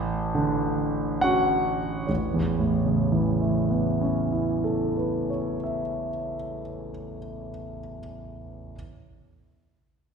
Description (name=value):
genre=classical, impressionist solo piano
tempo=21-28 BPM (dotted quarters)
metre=6/8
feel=rubato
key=A major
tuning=A4 = 440 Hz
part: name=bright concert grand piano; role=solo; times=0.0-8.8 s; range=A1 to A5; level=-24 LUFS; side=right 1 dB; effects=none
room=wet scoring stage reverb, RT60 1.7 s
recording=heard from further back in the room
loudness=-23 LUFS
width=side -6 dB against mid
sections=0.0-2.1 A section; 2.1-6.5 B section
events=slowing down 0.0-2.1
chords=0.0 Dmaj7/A; 2.1 Aadd9